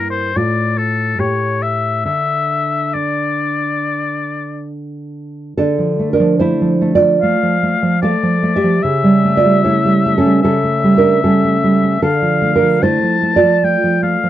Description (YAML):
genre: romantic duo for oboe and classical guitar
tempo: 67-76 BPM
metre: 4/4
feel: rubato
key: D minor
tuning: A4 = 440 Hz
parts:
  - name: clear oboe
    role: melody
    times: 0.0-14.3 s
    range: A4 to A5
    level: -18 LUFS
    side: left 5 dB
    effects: none
  - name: nylon-string guitar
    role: accompaniment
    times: 0.0-14.3 s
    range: G2 to F5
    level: -14 LUFS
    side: right 2 dB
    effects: none
room: little or no reverb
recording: dry, close 1970s-style studio recording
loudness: -12 LUFS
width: side -12 dB against mid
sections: 0.0-5.6 A section; 5.6-14.3 A section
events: none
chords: 0.4 Dm/A; 1.2 A7; 2.1 N.C.; 5.6 Dm; 8.8 A7/C#; 12.0 Dm